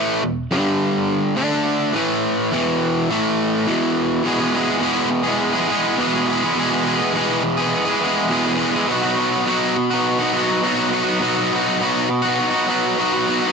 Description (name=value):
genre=rock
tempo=103 BPM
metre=4/4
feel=straight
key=E major from 4.3 s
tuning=A4 = 440 Hz
part: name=crunchy overdriven guitar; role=solo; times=0.0-13.5 s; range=E2 to G#4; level=-17 LUFS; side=equal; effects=none
room=moderate club reverb, RT60 0.8 s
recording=none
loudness=-17 LUFS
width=side -5 dB against mid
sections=0.0-4.3 A section; 4.3-13.5 B section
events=none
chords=0.0 E5; 0.5 G5; 1.4 D5; 1.9 A5; 2.5 E5; 3.1 A5; 3.7 E5; 4.3 E; 8.9 B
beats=0.23 0.80 1.37 | 1.95 2.52 3.10 3.68 | 4.25 4.83 5.41 5.99 | 6.58 7.16 7.74 8.32 | 8.90 9.49 10.07 10.65 | 11.24 11.82 12.40 12.99